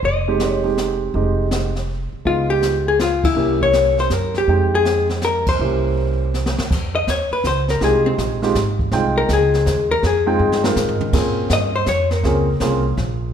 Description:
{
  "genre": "jazz, small-group swing and bop",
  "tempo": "162 BPM",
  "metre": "3/4",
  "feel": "swing 66% on 8ths",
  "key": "F minor",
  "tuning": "A4 = 440 Hz",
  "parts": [
    { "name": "upright bass", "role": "bass", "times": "0.0-13.3 s", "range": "F1 to Bb2", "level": "-21 LUFS", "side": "right 1 dB", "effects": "none" },
    { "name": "jazz brush drum kit", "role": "drums", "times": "0.0-13.3 s", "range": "brushed snare drum, crash cymbal, hi-hat, kick drum, ride cymbal, snare drum, toms", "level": "-24 LUFS", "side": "equal", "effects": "none" },
    { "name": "hollow-body jazz guitar", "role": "melody", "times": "0.1-12.6 s", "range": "C4 to Eb5", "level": "-19 LUFS", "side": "left 3 dB", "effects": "none" },
    { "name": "warm concert grand piano", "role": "accompaniment", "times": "0.3-12.8 s", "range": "Ab3 to G5", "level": "-22 LUFS", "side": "right 3 dB", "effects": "none" }
  ],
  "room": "moderate concert hall reverb, RT60 1.8 s",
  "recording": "recorded in a church or concert hall",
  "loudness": "-16 LUFS",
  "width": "side -8 dB against mid",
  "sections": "0.0-6.7 A section; 6.7-13.3 B section",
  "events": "band accent 3.2, 5.4; drum fill 6.3-6.7, 10.4-11.1; hollow-body jazz guitar solo 6.7-13.3",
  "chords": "0.0 Fm7; 2.3 Db7; 3.4 C7b9; 4.5 Fm7; 5.6 C7b9; 6.7 Fm7; 11.1 Bbm7"
}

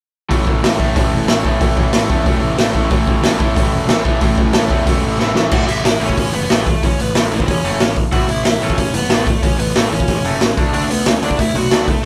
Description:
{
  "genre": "punk rock",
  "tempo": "184 BPM",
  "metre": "4/4",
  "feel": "straight",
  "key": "A major",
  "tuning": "A4 = 440 Hz",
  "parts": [
    { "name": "crunchy overdriven guitar", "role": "riff", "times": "0.3-12.0 s", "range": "A2 to D4", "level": "-23 LUFS", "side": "equal", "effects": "none" },
    { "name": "overdriven semi-hollow guitar", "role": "riff", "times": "0.3-5.5 s", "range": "A2 to E4", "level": "-25 LUFS", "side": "equal", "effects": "none" },
    { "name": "fuzz picked electric bass", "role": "bass", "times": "0.3-11.9 s", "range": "E1 to A2", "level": "-24 LUFS", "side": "equal", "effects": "overdrive" },
    { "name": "raw garage drum kit", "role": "drums", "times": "0.3-12.0 s", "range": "crash cymbal, hi-hat, kick drum, snare drum", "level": "-18 LUFS", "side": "equal", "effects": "none" },
    { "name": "lead guitar through a small cranked amp", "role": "melody", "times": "5.5-12.0 s", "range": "A3 to F#5", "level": "-24 LUFS", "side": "equal", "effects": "overdrive" }
  ],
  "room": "little or no reverb",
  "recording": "band playing live in one room",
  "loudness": "-16 LUFS",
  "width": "mono",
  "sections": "0.3-5.5 A section; 5.5-12.1 B section",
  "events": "drum fill 5.2-5.5",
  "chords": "0.3 A; 10.6 D"
}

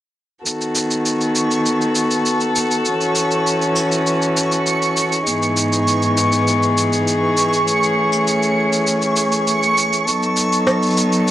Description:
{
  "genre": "folktronica",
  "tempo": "100 BPM",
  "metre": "4/4",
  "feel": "straight",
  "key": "unclear",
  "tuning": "A4 = 440 Hz",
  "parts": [
    { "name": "dark string quartet", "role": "sustained chords", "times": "0.4-11.3 s", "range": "G#2 to A4", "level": "-17 LUFS", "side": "equal", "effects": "cassette tape" },
    { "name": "electronic shaker and rim click", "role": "drums", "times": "0.5-11.3 s", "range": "none", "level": "-21 LUFS", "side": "equal", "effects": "cassette tape" },
    { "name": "backwards swelling texture", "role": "texture", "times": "0.9-11.3 s", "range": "C#6", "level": "-21 LUFS", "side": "right 1 dB", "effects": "built-in reverb, cassette tape" }
  ],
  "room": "moderate small room reverb, RT60 0.5 s",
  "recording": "home recording on cassette",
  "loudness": "-15 LUFS",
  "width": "side -13 dB against mid",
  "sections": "0.5-11.3 A section",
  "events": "none",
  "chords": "0.5 B7; 2.9 F#m7; 5.3 Emaj7/G#; 7.7 Amaj7; 10.1 B7"
}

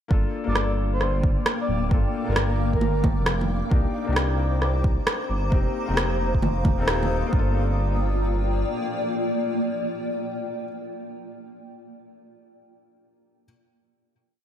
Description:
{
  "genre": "future garage",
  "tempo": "133 BPM",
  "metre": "4/4",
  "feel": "swing 66% on 16ths",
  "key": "G minor",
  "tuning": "A4 = 440 Hz",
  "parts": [
    { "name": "felt-muted upright piano", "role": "accompaniment", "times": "0.1-13.5 s", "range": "Bb3 to Bb4", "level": "-31 LUFS", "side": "left 5 dB", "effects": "sidechain pumping, analog delay" },
    { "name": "granular cloud pad", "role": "sustained chords", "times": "0.9-10.6 s", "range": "Bb3 to Eb6", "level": "-29 LUFS", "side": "left 1 dB", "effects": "built-in reverb, lush chorus, sidechain pumping" },
    { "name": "dark detuned saw bass", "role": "bass", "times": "0.1-8.6 s", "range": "D1 to C2", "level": "-25 LUFS", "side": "equal", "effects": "sidechain pumping" },
    { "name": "electronic kick drum", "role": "drums", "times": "0.1-7.4 s", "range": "none", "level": "-22 LUFS", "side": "equal", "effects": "none" },
    { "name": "breathy flute-like synth lead", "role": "melody", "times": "0.5-3.0 s", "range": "Bb4 to D5", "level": "-32 LUFS", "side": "right 1 dB", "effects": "analog chorus, diffuse ambient delay" },
    { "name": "electronic rim click and bongos", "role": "drums", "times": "0.6-7.1 s", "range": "none", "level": "-26 LUFS", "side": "right 1 dB", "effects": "none" }
  ],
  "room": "moderate lush hall reverb, RT60 1.9 s",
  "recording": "dreamy mix soaked in reverb",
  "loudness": "-21 LUFS",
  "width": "side -10 dB against mid",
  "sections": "0.1-7.3 groove; 7.3-10.9 final chord",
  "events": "none",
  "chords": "0.1 Gm7; 3.7 Cm9; 5.5 F7sus4; 7.3 Gm7"
}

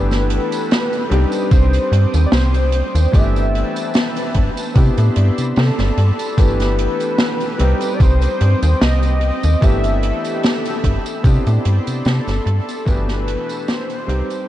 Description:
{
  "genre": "vaporwave",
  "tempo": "74 BPM",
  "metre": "4/4",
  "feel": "swing 54% on 16ths",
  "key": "G major",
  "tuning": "A4 = 438 Hz",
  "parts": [
    { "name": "warm velvety synth lead", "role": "melody", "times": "0.0-14.5 s", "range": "A4 to E5", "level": "-24 LUFS", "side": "equal", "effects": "chorus, tape echo" },
    { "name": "warm electric grand piano", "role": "accompaniment", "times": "0.0-14.5 s", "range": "B2 to G4", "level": "-24 LUFS", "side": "left 2 dB", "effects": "lush chorus, diffuse ambient delay" },
    { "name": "lush unison pad", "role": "sustained chords", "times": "0.0-14.5 s", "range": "C4 to E6", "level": "-28 LUFS", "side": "right 1 dB", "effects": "chorus" },
    { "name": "slap-like FM bass", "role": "bass", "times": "0.0-14.2 s", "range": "G1 to C3", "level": "-16 LUFS", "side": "equal", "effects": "none" },
    { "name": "swinging big-band drum kit", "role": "drums", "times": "0.1-14.5 s", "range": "hi-hat, snare drum, tambourine", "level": "-23 LUFS", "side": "equal", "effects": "vintage 12-bit sampler grit, studio ambience" },
    { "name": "electronic kick drum", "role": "drums", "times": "1.5-13.0 s", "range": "none", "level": "-14 LUFS", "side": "equal", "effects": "vintage 12-bit sampler grit, studio ambience" }
  ],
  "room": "light reverb",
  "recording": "cassette tape",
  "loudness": "-14 LUFS",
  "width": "side -13 dB against mid",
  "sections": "0.0-14.5 A section",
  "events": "fade-out 10.7-14.5",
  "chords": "0.0 G69; 1.1 Cmadd9; 3.1 G69; 4.8 Cmaj9; 6.4 G69; 7.6 Cmadd9; 9.6 G69; 11.2 Cmaj9; 12.9 G69"
}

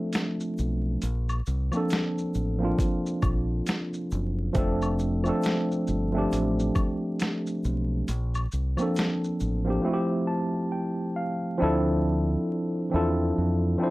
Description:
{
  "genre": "lo-fi hip hop",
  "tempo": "68 BPM",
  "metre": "4/4",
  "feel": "swing 61% on 16ths",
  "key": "F major",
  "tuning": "A4 = 439 Hz",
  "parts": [
    { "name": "tine electric piano", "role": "accompaniment", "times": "0.0-13.9 s", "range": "E3 to A5", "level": "-26 LUFS", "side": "equal", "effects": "medium stereo tremolo, low-pass filter" },
    { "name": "boom bap sampler-style drum kit", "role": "drums", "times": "0.1-9.7 s", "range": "hi-hat, kick drum, shaker, snare drum", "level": "-29 LUFS", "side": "equal", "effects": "overdrive, vintage 12-bit sampler grit" },
    { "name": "egg shaker and woodblock", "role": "percussion", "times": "0.1-9.7 s", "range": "none", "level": "-39 LUFS", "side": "left 2 dB", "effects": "none" },
    { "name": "deep dub fingered electric bass", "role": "bass", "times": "0.6-13.7 s", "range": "F1 to F2", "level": "-27 LUFS", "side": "equal", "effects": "none" }
  ],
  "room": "moderate studio ambience, RT60 0.5 s",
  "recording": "vinyl crackle",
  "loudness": "-24 LUFS",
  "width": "side -20 dB against mid",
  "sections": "0.0-11.6 A section; 11.6-13.9 B section",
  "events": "tine electric piano fill 9.8-11.6",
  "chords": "0.0 F6; 1.0 Bbmaj9; 4.5 F6; 8.1 Bbmaj9; 9.8 Fmaj9; 11.6 Dm9"
}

